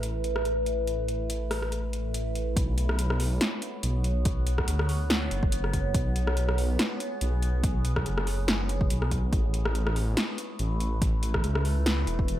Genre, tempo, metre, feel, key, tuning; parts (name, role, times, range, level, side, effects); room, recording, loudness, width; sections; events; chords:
deep dubstep; 142 BPM; 4/4; swing 55% on 16ths, half-time; A4 = 440 Hz
overtone-sweeping drone; sustained chords; 0.0-12.4 s; A3 to C#5; -34 LUFS; equal; chorus, built-in reverb, phaser
dark detuned saw bass; bass; 0.0-12.4 s; E1 to D2; -27 LUFS; equal
deep house drum kit; drums; 0.0-12.4 s; hi-hat, rim click, snare drum; -30 LUFS; equal; overdrive
electronic kick drum; drums; 2.6-12.3 s; -28 LUFS; equal; overdrive
light reverb, digital ambience; -25 LUFS; side -12 dB against mid
0.0-2.6 A section; 2.6-12.4 B section
filter sweep on drum 0.0-2.6; filter sweep on synth drone 0.0-2.6; drop 2.6-12.4
0.0 A5; 2.6 Bsus2; 9.3 A